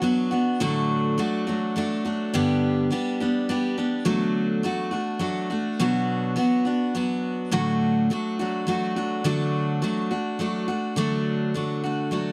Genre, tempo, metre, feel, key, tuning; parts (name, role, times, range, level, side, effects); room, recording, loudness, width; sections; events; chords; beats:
rock; 104 BPM; 3/4; straight; D major; A4 = 438 Hz
picked steel-string acoustic guitar; solo; 0.0-12.3 s; G2 to G4; -25 LUFS; equal
light reverb; dry, close 1970s-style studio recording; -25 LUFS; mono
0.0-11.0 A section; 11.0-12.3 B section
0.0 Bm; 0.6 D/A; 2.3 G; 4.1 D; 5.8 Bm; 7.5 D/A; 9.2 D
0.03 | 0.61 1.18 1.76 | 2.34 2.91 3.49 | 4.06 4.64 5.22 | 5.79 6.37 6.95 | 7.52 8.10 8.67 | 9.25 9.82 10.40 | 10.98 11.55 12.13